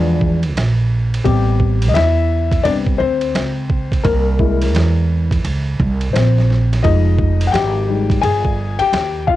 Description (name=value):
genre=hip hop, jazz-hop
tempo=86 BPM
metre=4/4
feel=swing 63% on 16ths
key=unclear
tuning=A4 = 440 Hz
part: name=dark upright piano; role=accompaniment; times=0.0-9.4 s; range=F3 to Ab5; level=-18 LUFS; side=left 6 dB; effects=cassette tape
part: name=upright bass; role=bass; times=0.0-9.4 s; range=F1 to E2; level=-16 LUFS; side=right 2 dB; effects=none
part: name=boom bap sampler-style drum kit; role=drums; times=0.2-9.4 s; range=hi-hat, kick drum, ride cymbal, snare drum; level=-21 LUFS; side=right 2 dB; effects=cassette tape
room=little or no reverb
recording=home recording on cassette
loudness=-14 LUFS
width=side -14 dB against mid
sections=0.0-9.4 A section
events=upright piano solo 0.0-9.4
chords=0.0 E7b9; 1.3 Am9; 4.0 Caug7; 6.8 Fm9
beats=0.56 | 1.26 1.95 2.65 3.35 | 4.05 4.75 5.44 6.14 | 6.84 7.54 8.23 8.93